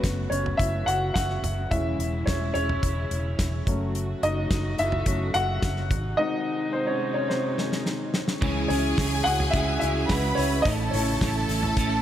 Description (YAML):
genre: piano-driven pop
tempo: 107 BPM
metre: 4/4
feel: straight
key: C# minor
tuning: A4 = 440 Hz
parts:
  - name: warm upright piano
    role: accompaniment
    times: 0.0-12.0 s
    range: D#3 to F#5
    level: -27 LUFS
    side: left 1 dB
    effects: none
  - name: warm studio string section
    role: sustained chords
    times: 0.0-12.0 s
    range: B#2 to F#4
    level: -36 LUFS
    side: right 2 dB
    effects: none
  - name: vintage muted fingered electric bass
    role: bass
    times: 0.0-12.0 s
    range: E1 to C#2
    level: -29 LUFS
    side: equal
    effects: none
  - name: damped 70s drum kit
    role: drums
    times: 0.0-11.9 s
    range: crash cymbal, hi-hat, kick drum, snare drum, toms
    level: -28 LUFS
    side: equal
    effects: none
  - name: rich studio violin section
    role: second line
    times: 8.4-12.0 s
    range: G#4 to B5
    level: -29 LUFS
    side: equal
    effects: none
  - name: electric guitar at the edge of break-up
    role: riff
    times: 8.4-12.0 s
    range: A2 to A4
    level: -29 LUFS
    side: right 5 dB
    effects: ensemble chorus
room: light reverb, studio reverb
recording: none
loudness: -23 LUFS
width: side -11 dB against mid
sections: 0.0-8.4 A section; 8.4-12.0 B section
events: upright piano solo 0.0-8.4, 8.4-12.0; drum fill 7.3-8.4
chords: 0.0 F#m; 1.7 C#m/E; 3.7 F#m; 5.9 G#; 8.4 C#m; 10.7 A